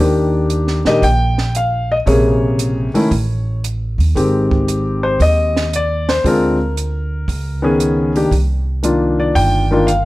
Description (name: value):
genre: jazz piano trio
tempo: 115 BPM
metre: 4/4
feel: swing 68% on 8ths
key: Eb major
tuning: A4 = 440 Hz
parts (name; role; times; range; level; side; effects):
- warm grand piano; melody; 0.0-10.1 s; C3 to G5; -15 LUFS; left 1 dB; none
- upright bass; bass; 0.0-10.1 s; G1 to Bb2; -18 LUFS; right 1 dB; none
- compact cocktail drum kit; drums; 0.5-10.0 s; hi-hat, kick drum, snare drum; -23 LUFS; right 3 dB; none
room: light reverb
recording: none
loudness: -13 LUFS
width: side -18 dB against mid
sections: 0.0-10.1 A section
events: none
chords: 0.0 Ebmaj7; 2.1 Bbm9; 3.1 A; 4.2 Abmaj7; 6.2 Dm7b5; 7.3 Dbsus2; 8.3 Cm11